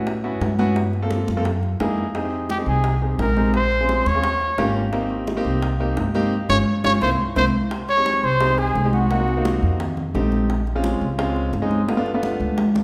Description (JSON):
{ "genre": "Afro-Cuban jazz", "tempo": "173 BPM", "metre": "4/4", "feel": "straight", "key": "Ab major", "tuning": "A4 = 437 Hz", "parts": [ { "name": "clear grand piano", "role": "accompaniment", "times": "0.0-12.6 s", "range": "Ab3 to A4", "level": "-27 LUFS", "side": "equal", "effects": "none" }, { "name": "upright bass", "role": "bass", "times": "0.0-12.8 s", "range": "G1 to A2", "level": "-26 LUFS", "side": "equal", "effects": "none" }, { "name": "bongos", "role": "percussion", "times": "0.1-12.8 s", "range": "none", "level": "-34 LUFS", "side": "equal", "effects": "none" }, { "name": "congas", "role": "percussion", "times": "0.1-12.8 s", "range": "none", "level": "-28 LUFS", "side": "equal", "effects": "none" }, { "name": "warm trumpet", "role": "melody", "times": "2.5-9.6 s", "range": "Gb4 to Db5", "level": "-24 LUFS", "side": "equal", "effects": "none" }, { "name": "breathy mellow silver concert flute", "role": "second line", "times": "2.5-9.6 s", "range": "Gb5 to Db6", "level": "-30 LUFS", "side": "equal", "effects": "none" } ], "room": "wet recital hall reverb, RT60 1.6 s", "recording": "recorded in a church or concert hall", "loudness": "-21 LUFS", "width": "mono", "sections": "0.0-7.7 A section; 7.7-12.8 B section", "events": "band accent 6.3-7.7; drum fill 6.7-7.7, 12.4-12.8", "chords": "0.0 A69; 0.8 Gm11; 1.5 Gb13; 2.1 Fm9; 3.5 Bbm9; 4.2 Eb7; 4.9 Abmaj9; 6.3 Db; 7.0 C7; 7.7 Abmaj7; 9.1 Cm7b5; 9.8 F7; 10.5 Bbm7; 11.9 G7" }